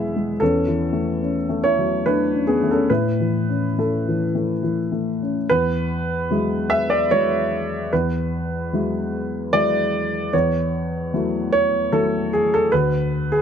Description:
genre	neoclassical minimalist piano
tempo	74 BPM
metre	3/4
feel	rubato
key	A major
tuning	A4 = 445 Hz
part	dark upright piano	solo	0.0-13.4 s	D2 to F#5	-18 LUFS	equal	none
room	light reverb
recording	close, detailed microphones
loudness	-18 LUFS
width	side -8 dB against mid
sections	0.0-5.5 A section; 5.5-13.4 B section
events	none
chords	0.4 A6/E; 2.9 A; 5.5 Eadd9; 10.3 A6/E; 12.7 N.C.

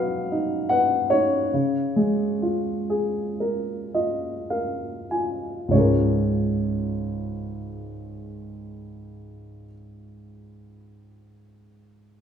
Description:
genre	classical, lyrical solo piano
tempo	47-79 BPM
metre	4/4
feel	rubato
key	Db mixolydian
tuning	A4 = 441 Hz
part	dark baby grand piano	solo	0.0-12.2 s	Db2 to Ab5	-22 LUFS	equal	none
room	moderate scoring stage reverb, RT60 1.5 s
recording	minimal, uncompressed stereo recording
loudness	-22 LUFS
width	side -8 dB against mid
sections	0.0-5.7 A section; 5.7-10.6 B section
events	slowing down 0.0-5.7; grand piano fill 3.4-5.7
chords	0.0 Cb; 1.5 Db6

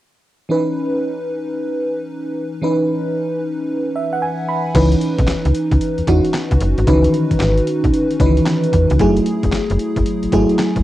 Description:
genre	R&B, new jack swing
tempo	113 BPM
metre	4/4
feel	swing 65% on 16ths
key	C# minor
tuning	A4 = 440 Hz
part	FM electric piano with soft pad layer	accompaniment	0.5-10.8 s	D#3 to B5	-17 LUFS	equal	chorus, cassette tape
part	slap-like FM bass	bass	4.7-10.8 s	E1 to E2	-16 LUFS	equal	none
part	dusty soul sampler-style drum kit	drums	4.7-10.8 s	crash cymbal, handclaps, hi-hat, kick drum, snare drum	-22 LUFS	equal	cassette tape
room	moderate small room ambience, RT60 0.5 s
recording	home recording on cassette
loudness	-15 LUFS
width	side -14 dB against mid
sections	0.5-4.7 A section; 4.7-10.8 B section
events	FM electric piano fill 3.7-4.7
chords	0.5 C#m9; 9.0 F#m9

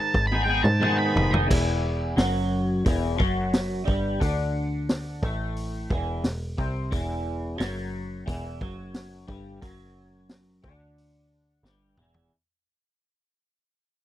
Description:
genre	psychedelic rock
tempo	89 BPM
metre	4/4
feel	straight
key	unclear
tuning	A4 = 440 Hz
part	octave-fuzz lead guitar	melody	0.0-1.3 s	G5 to B5	-27 LUFS	right 2 dB	distortion, tape echo
part	twangy electric guitar	riff	0.0-12.3 s	E2 to G#4	-28 LUFS	left 1 dB	rotary speaker
part	picked electric bass	bass	0.1-12.3 s	E1 to G#2	-28 LUFS	equal	none
part	vintage drum kit	drums	0.1-12.3 s	crash cymbal, hi-hat, kick drum, snare drum, toms	-26 LUFS	equal	none
room	light reverb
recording	dry, close 1970s-style studio recording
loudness	-23 LUFS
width	side -13 dB against mid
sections	0.0-1.5 A section; 1.5-12.3 B section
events	lead electric guitar solo 0.0-1.5; drum fill 0.1-1.5, 11.6-12.3; fade-out 1.5-12.3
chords	0.0 G#m; 1.5 Em

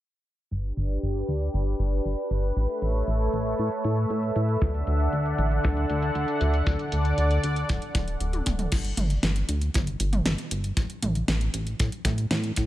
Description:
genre	synthwave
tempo	117 BPM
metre	4/4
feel	straight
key	unclear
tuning	A4 = 440 Hz
part	lush unison pad	sustained chords	0.5-8.7 s	D3 to F#5	-28 LUFS	equal	chorus
part	chorused synth bass	bass	0.5-12.7 s	D1 to A2	-26 LUFS	equal	sidechain pumping
part	pop drum kit	drums	0.5-12.7 s	crash cymbal, hi-hat, snare drum, toms	-29 LUFS	equal	studio reverb
part	kick drum	drums	4.6-12.7 s	none	-28 LUFS	equal	studio reverb
room	light reverb, small room ambience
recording	low-pass filter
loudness	-24 LUFS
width	side -14 dB against mid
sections	0.5-8.7 A section; 8.7-12.7 B section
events	filter sweep on analog synth bass 0.5-8.7; filter sweep on analog synth pad 0.5-8.7; filter sweep 0.5-8.7; drum fill 8.3-8.7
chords	0.5 G; 2.6 Aadd9; 4.6 Dadd9; 8.7 G5; 10.8 N.C.

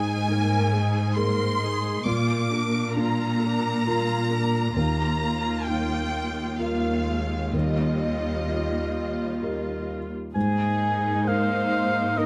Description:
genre	cinematic, emotional film score for orchestra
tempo	66 BPM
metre	3/4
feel	rubato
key	Eb major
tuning	A4 = 440 Hz
part	rich studio violin section	melody	0.0-9.9 s	Eb5 to D6	-32 LUFS	equal	none
part	felt-muted upright piano	accompaniment	0.0-12.3 s	Eb2 to Bb4	-30 LUFS	equal	none
part	rich studio viola section	accompaniment	0.0-12.3 s	G3 to Bb4	-34 LUFS	equal	none
part	clear studio cello section	bass	0.0-12.3 s	Eb2 to Bb2	-30 LUFS	equal	none
part	warm studio violin section	second line	10.3-12.3 s	Ab4 to C5	-35 LUFS	equal	none
part	clear oboe	second line	10.4-12.3 s	Eb5 to Ab5	-28 LUFS	equal	none
room	light reverb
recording	close, detailed microphones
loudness	-25 LUFS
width	mono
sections	0.0-10.4 A section; 10.4-12.3 A section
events	none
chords	0.0 Absus2; 2.1 Bb; 4.8 Ebsus2; 7.5 Ebadd9; 10.4 Absus2

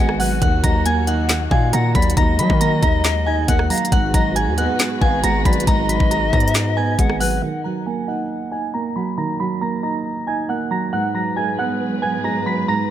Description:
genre	hip hop, trap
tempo	137 BPM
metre	4/4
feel	half-time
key	Eb minor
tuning	A4 = 440 Hz
part	glassy synth bell	melody	0.0-12.9 s	Gb5 to Cb7	-23 LUFS	right 1 dB	chorus, low-pass filter, ping-pong delay
part	polished pan flute	second line	0.0-7.4 s	Cb5 to Gb5	-26 LUFS	left 7 dB	ping-pong delay
part	dark concert grand piano	accompaniment	0.0-12.9 s	Ab2 to Eb4	-23 LUFS	right 5 dB	low-pass filter
part	dark symphonic string section	sustained chords	0.0-7.4, 10.9-12.9 s	Ab2 to Cb5	-29 LUFS	left 1 dB	low-pass filter
part	distorted 808-style bass	bass	0.0-7.4 s	Ab1 to Gb3	-21 LUFS	left 1 dB	distortion
part	trap drum kit	drums	0.1-7.3 s	handclaps, hi-hat, kick drum, rim click, snare drum	-19 LUFS	left 1 dB	none
room	small room ambience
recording	none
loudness	-16 LUFS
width	side -11 dB against mid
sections	0.0-7.4 A section; 7.4-12.9 B section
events	filter sweep 7.4-12.9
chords	0.4 Ebm; 3.9 Abm7; 7.4 Ebm; 10.9 Abm7

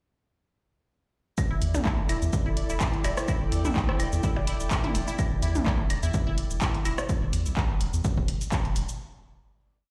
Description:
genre	minimal techno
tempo	126 BPM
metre	4/4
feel	swing 54% on 16ths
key	E minor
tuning	A4 = 440 Hz
part	electronic kick drum	drums	1.4-8.6 s	none	-30 LUFS	equal	none
part	punchy analog drum machine	drums	1.4-9.0 s	cabasa, handclaps, hi-hat	-37 LUFS	equal	none
part	minimal click drum kit	percussion	1.4-7.1 s	claves, percussion blips, rim click, toms	-34 LUFS	equal	tape echo
part	airy breathy pad	texture	1.4-7.1 s	E4 to G5	-39 LUFS	equal	chorus, sidechain pumping
part	pulsing gated texture	texture	1.4-7.1 s	D5	-47 LUFS	equal	chorus, built-in reverb, sidechain pumping
part	resonant blip pluck	riff	1.5-6.9 s	E4	-40 LUFS	equal	phaser, sidechain pumping, delay
part	round analog bass	bass	1.5-8.9 s	E1 to E2	-31 LUFS	equal	sidechain pumping
room	light reverb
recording	played on a big sound system in a bare room, stone room reverb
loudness	-27 LUFS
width	mono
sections	1.4-9.0 drop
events	drop 1.4-9.0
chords	1.4 Em7

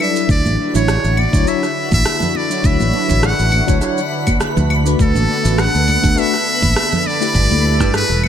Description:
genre	sunset chillout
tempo	102 BPM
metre	4/4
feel	swing 55% on 16ths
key	D major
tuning	A4 = 441 Hz
part	trumpet with metal mute	melody	0.0-8.3 s	A4 to F#5	-19 LUFS	equal	ping-pong delay
part	tine electric piano	accompaniment	0.0-8.0 s	F#3 to D5	-22 LUFS	moving between left 7 dB and right 6 dB	slow stereo tremolo, auto-pan
part	lush unison pad	sustained chords	0.0-8.3 s	D3 to B4	-23 LUFS	left 2 dB	chorus, phaser
part	electronic claves, shaker and rim click	drums	0.0-8.3 s	none	-23 LUFS	equal	none
part	fingered electric bass	bass	0.3-8.3 s	E1 to G2	-16 LUFS	equal	none
part	electronic kick drum	drums	0.3-7.9 s	none	-17 LUFS	equal	overdrive
part	twinkling granular texture	texture	0.7-8.3 s	B4 to B5	-30 LUFS	right 2 dB	built-in reverb
part	congas	percussion	0.5-8.3 s	none	-24 LUFS	right 2 dB	none
room	light reverb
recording	none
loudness	-13 LUFS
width	side -9 dB against mid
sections	0.0-8.3 A section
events	none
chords	0.3 Dmaj9; 5.0 Bm7; 7.3 G69

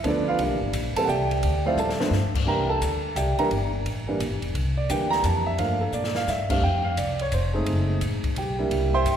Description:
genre	jazz piano trio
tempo	173 BPM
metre	3/4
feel	swing 65% on 8ths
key	C mixolydian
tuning	A4 = 441 Hz
part	warm grand piano	melody	0.0-9.2 s	E3 to C6	-24 LUFS	right 2 dB	none
part	upright bass	bass	0.0-9.2 s	E1 to Bb2	-26 LUFS	left 1 dB	none
part	open jazz drum kit	drums	0.0-9.2 s	crash cymbal, hi-hat, kick drum, ride cymbal, snare drum, toms	-32 LUFS	left 2 dB	none
room	wet concert hall reverb, RT60 2.1 s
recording	recorded in a church or concert hall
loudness	-22 LUFS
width	side -9 dB against mid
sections	0.0-2.5 A section; 2.5-9.2 A section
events	grand piano solo 0.0-9.2; drum fill 1.8-2.1, 5.9-6.3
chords	0.4 C9; 1.4 Dm7; 2.1 N.C.; 2.5 C9; 5.6 Gm7; 6.3 Cadd9; 6.6 F5; 7.7 F#dim7

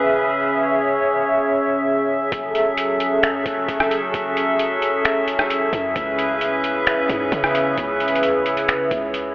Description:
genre	hip hop, atmospheric cloud-rap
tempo	132 BPM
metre	4/4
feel	half-time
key	F# minor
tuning	A4 = 440 Hz
part	hollow soft pad	sustained chords	0.0-9.3 s	C#3 to E5	-18 LUFS	equal	chorus, sidechain pumping
part	warm 808-style bass	bass	2.3-9.3 s	F#1 to C#3	-32 LUFS	equal	none
part	trip hop sampler-style drum kit	drums	2.3-9.2 s	finger snaps, hi-hat, kick drum, rim click	-24 LUFS	equal	none
part	drifting glass-harmonics texture	texture	3.2-9.3 s	A3 to E5	-27 LUFS	equal	chorus, built-in reverb
room	moderate huge ambient reverb, RT60 7.0 s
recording	telephone sound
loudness	-17 LUFS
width	side -20 dB against mid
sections	0.0-9.3 A section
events	none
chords	0.0 C#m7; 2.3 F#m7; 6.0 C#m7

